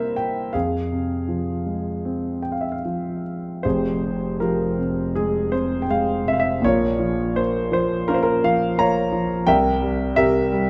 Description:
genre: classical, lyrical solo piano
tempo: 72-88 BPM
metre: 4/4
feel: rubato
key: F harmonic minor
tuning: A4 = 439 Hz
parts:
  - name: warm concert grand piano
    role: solo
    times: 0.0-10.7 s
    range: F1 to Bb5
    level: -22 LUFS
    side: equal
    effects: none
room: moderate recital hall reverb, RT60 1.9 s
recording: dark, warm production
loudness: -22 LUFS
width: mono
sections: 0.0-3.6 A section; 3.6-10.7 A section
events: none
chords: 0.0 C7; 0.5 Fm; 3.6 Fmadd9; 6.6 Bbm; 9.5 C7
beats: | 0.54 1.29 2.04 2.85 | 3.65 4.41 5.16 5.89 | 6.63 7.36 8.08 8.78 | 9.47 10.17

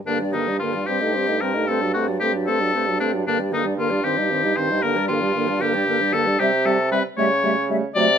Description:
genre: quick classical-period movement for wind quintet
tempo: 76 BPM (dotted quarters)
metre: 6/8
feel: rubato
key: G minor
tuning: A4 = 440 Hz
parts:
  - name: concert flute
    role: melody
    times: 0.1-8.0 s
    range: Bb4 to E5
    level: -29 LUFS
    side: left 8 dB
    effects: none
  - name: clear oboe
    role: second line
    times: 0.1-8.2 s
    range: D4 to D5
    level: -22 LUFS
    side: left 4 dB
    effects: none
  - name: mellow French horn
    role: accompaniment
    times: 0.1-8.1 s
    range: D3 to A3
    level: -27 LUFS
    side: right 1 dB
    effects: none
  - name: mellow clarinet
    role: accompaniment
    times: 0.1-8.1 s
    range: A3 to Eb4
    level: -28 LUFS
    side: right 8 dB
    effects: none
  - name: warm bassoon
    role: bass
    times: 0.1-8.2 s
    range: G2 to C#3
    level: -25 LUFS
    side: right 3 dB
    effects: none
room: light reverb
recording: minimal, uncompressed stereo recording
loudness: -18 LUFS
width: side -8 dB against mid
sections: 0.1-8.2 A section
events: none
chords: 0.1 Gm; 0.9 Am7b5/G; 1.7 D7/G; 3.3 Gm; 4.0 Cm/G; 4.8 Gm; 6.4 C5; 7.2 A7/C#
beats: | 0.07 0.88 | 1.68 2.47 | 3.26 4.04 | 4.83 5.61 | 6.39 7.17 | 7.96

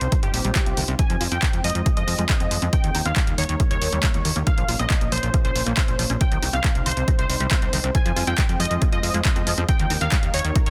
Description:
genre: uplifting trance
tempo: 138 BPM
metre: 4/4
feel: straight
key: F minor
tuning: A4 = 438 Hz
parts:
  - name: supersaw stab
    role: melody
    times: 0.0-10.7 s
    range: G4 to Ab5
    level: -30 LUFS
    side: equal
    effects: sidechain pumping, low-pass filter, delay
  - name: plucky analog bass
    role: bass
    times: 0.0-10.7 s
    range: G1 to F2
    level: -27 LUFS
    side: equal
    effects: sidechain pumping
  - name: punchy analog drum machine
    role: drums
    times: 0.0-10.7 s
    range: handclaps, hi-hat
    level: -29 LUFS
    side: equal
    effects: none
  - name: liquid acid bass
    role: arpeggios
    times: 0.1-10.6 s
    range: Eb3 to F4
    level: -33 LUFS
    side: equal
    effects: chorus, sidechain pumping, delay
  - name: electronic kick drum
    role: drums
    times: 0.1-10.6 s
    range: none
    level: -24 LUFS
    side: equal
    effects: none
  - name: swell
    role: sound effects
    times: 0.3-1.0 s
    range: none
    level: -44 LUFS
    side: equal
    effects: none
room: little or no reverb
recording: dense, heavily limited modern master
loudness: -21 LUFS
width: mono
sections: 0.0-10.7 A section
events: filter sweep on acid bass 0.0-10.7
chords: 0.0 Cm; 1.0 Fm; 2.7 Eb; 4.5 Bbm; 6.2 Cm; 7.9 Fm; 9.7 Eb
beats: 0.12 0.56 | 0.99 1.43 1.86 2.30 | 2.73 3.17 3.60 4.04 | 4.47 4.90 5.34 5.77 | 6.21 6.64 7.08 7.51 | 7.95 8.38 8.82 9.25 | 9.69 10.12 10.56

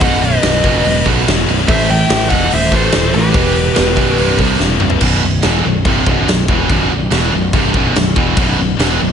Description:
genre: heavy metal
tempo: 144 BPM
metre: 4/4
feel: straight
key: unclear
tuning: A4 = 435 Hz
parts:
  - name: high-gain lead guitar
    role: melody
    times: 0.0-4.4 s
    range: B4 to G5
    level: -18 LUFS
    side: left 1 dB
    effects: distortion, tape echo
  - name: high-gain lead guitar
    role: second line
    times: 0.0-4.4 s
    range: G4 to E5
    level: -21 LUFS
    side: right 3 dB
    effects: distortion
  - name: heavy high-gain guitar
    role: riff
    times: 0.0-9.1 s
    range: B1 to E3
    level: -20 LUFS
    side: left 14 dB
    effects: distortion
  - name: heavy high-gain guitar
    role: riff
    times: 0.0-9.1 s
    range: B1 to A3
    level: -19 LUFS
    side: right 13 dB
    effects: distortion
  - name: thick fuzz guitar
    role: riff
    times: 0.0-9.1 s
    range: B1 to A3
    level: -20 LUFS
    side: equal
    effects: distortion
  - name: modern bright picked electric bass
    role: bass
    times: 0.0-9.1 s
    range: B0 to C2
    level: -18 LUFS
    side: left 1 dB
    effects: none
  - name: big rock drum kit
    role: drums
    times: 0.0-8.9 s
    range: crash cymbal, hi-hat, kick drum, snare drum, toms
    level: -16 LUFS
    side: equal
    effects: none
room: little or no reverb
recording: nothing above 11.0 kHz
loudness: -11 LUFS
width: side -8 dB against mid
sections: 0.0-5.0 A section; 5.0-9.1 B section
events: drum fill 4.6-5.0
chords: 0.0 B; 1.7 Am; 3.4 Em; 4.2 C; 5.0 B5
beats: | 0.02 0.43 0.85 1.27 | 1.69 2.10 2.52 2.94 | 3.35 3.77 4.19 4.61 | 5.02 5.44 5.86 6.28 | 6.69 7.11 7.53 7.95 | 8.37 8.78

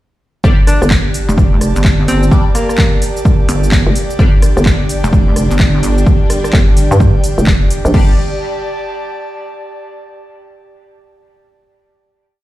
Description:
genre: bass house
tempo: 128 BPM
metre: 4/4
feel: swing 62% on 16ths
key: unclear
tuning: A4 = 440 Hz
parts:
  - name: band-passed chord stab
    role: stabs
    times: 0.4-4.3, 7.9-8.1 s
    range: G3 to D5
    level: -28 LUFS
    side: left 1 dB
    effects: phaser, ensemble chorus, sidechain pumping, tape echo
  - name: hollow knocking FM bass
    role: bass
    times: 0.4-8.2 s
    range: F1 to G2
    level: -13 LUFS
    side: equal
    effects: tube saturation, sidechain pumping
  - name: electronic kick drum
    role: drums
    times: 0.4-8.1 s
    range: none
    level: -12 LUFS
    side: equal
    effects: overdrive
  - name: house drum kit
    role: drums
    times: 0.4-8.1 s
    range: cabasa, crash cymbal, handclaps, hi-hat, rim click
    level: -21 LUFS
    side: equal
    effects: overdrive
  - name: airy breathy pad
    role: texture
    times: 0.4-9.8 s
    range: G4 to A5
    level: -23 LUFS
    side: right 2 dB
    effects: chorus, sidechain pumping
  - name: breathy alto saxophone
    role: melody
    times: 0.7-3.0 s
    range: Bb3 to D4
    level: -21 LUFS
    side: left 1 dB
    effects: tape echo
  - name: pulsing pluck wobble bass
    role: bass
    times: 1.3-6.0 s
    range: F1 to G1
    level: -13 LUFS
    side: equal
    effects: chorus, sidechain pumping
  - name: warm studio string section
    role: sustained chords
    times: 4.2-8.2 s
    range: D3 to D5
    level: -23 LUFS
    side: equal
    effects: sidechain pumping
room: little or no reverb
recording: played on a big sound system in a bare room, stone room reverb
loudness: -9 LUFS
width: side -15 dB against mid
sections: 0.4-7.9 drop; 7.9-9.8 final chord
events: drop 0.4-7.9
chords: 0.4 G5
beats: | 0.44 0.91 1.38 1.85 | 2.31 2.78 3.25 3.72 | 4.19 4.66 5.13 5.60 | 6.07 6.53 7.00 7.47 | 7.94 8.41 8.88 9.35

